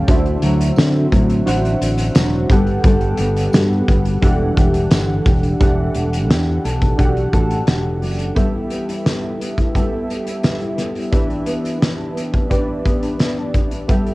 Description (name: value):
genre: indie pop, bedroom pop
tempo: 87 BPM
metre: 4/4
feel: straight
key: E minor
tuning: A4 = 440 Hz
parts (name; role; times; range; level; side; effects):
- nylon-string guitar; accompaniment; 0.0-14.1 s; D3 to A4; -22 LUFS; left 2 dB; lush chorus, vibrato effect, cassette tape
- warm analog keys; accompaniment; 0.0-14.1 s; B3 to A5; -23 LUFS; right 2 dB; chorus, cassette tape
- fretless electric bass; bass; 0.1-8.3 s; E1 to D3; -19 LUFS; equal; lush chorus
- loose indie drum kit; drums; 0.1-14.1 s; hi-hat, kick drum, snare drum; -18 LUFS; equal; none
- tambourine; percussion; 0.8-5.1 s; none; -38 LUFS; right 4 dB; none
room: light reverb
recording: home recording on cassette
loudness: -15 LUFS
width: side -20 dB against mid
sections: 0.0-5.6 A section; 5.6-8.4 B section; 8.4-14.1 C section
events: none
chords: 0.1 D9; 2.5 Gmaj9; 4.2 Em11; 8.4 G69; 11.1 Em7